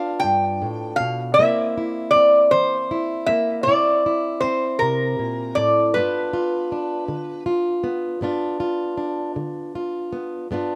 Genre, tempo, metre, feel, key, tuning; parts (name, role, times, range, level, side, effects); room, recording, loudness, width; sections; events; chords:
acoustic country blues, solo or duo; 53 BPM (dotted quarters); 12/8; straight; G mixolydian; A4 = 441 Hz
lap resonator guitar; melody; 0.0-7.4 s; Bb4 to G5; -21 LUFS; equal
fingerpicked plugged-in old ladder-braced acoustic guitar; accompaniment; 0.0-10.8 s; G2 to F4; -27 LUFS; equal
little or no reverb; recorded outdoors, with no room sound; -21 LUFS; mono
0.0-10.8 A section
0.0 G7; 1.4 C7; 6.0 G7